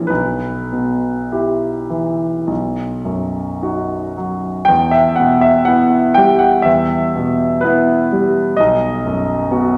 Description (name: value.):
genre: classical, romantic nocturne for solo piano.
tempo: 46-65 BPM.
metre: 4/4.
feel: rubato.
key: E minor.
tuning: A4 = 440 Hz.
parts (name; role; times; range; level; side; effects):
clear concert grand piano; solo; 0.0-9.8 s; B1 to G5; -16 LUFS; equal; none.
room: wet recital hall reverb, RT60 1.7 s.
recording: none.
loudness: -16 LUFS.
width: mono.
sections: 0.0-4.7 A section; 4.7-9.8 A section.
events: none.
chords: 0.1 Em/B; 2.5 B; 4.7 Em; 8.6 B.